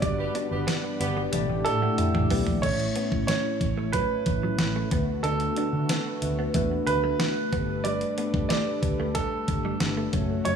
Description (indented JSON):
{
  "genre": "1980s-style pop",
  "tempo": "92 BPM",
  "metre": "4/4",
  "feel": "straight",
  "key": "unclear",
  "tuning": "A4 = 440 Hz",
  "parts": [
    { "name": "clear concert grand piano", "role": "melody", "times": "0.0-10.6 s", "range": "A4 to D5", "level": "-30 LUFS", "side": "right 5 dB", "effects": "digital delay" },
    { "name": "mellow tine electric piano", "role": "accompaniment", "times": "0.0-10.6 s", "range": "G2 to B5", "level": "-30 LUFS", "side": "left 5 dB", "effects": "phaser" },
    { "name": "brassy analog pad", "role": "sustained chords", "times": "0.0-10.6 s", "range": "D3 to F#5", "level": "-35 LUFS", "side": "equal", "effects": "chorus" },
    { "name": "direct-recorded clean electric guitar", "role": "riff", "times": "0.0-10.6 s", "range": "F#3 to D4", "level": "-35 LUFS", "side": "right 4 dB", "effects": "ensemble chorus, digital delay" },
    { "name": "vintage muted fingered electric bass", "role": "bass", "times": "0.0-10.6 s", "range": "F#1 to D3", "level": "-29 LUFS", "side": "right 1 dB", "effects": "none" },
    { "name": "clean 12-bit digital drum machine", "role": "drums", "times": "0.0-10.6 s", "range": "crash cymbal, hi-hat, kick drum, snare drum, tambourine, toms", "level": "-29 LUFS", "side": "right 1 dB", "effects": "none" },
    { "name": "warm horn section", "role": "stabs", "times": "0.2-1.2 s", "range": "B3 to B4", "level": "-36 LUFS", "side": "right 4 dB", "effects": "digital delay" }
  ],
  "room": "light reverb",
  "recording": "studio reverb",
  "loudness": "-24 LUFS",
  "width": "side -7 dB against mid",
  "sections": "0.0-2.6 A section; 2.6-10.6 B section",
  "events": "tine electric piano fill 0.7-2.6; drum fill 1.3-2.6",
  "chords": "0.0 Gmaj7; 1.3 A7sus4; 2.6 A; 4.9 D6; 7.5 Gadd9"
}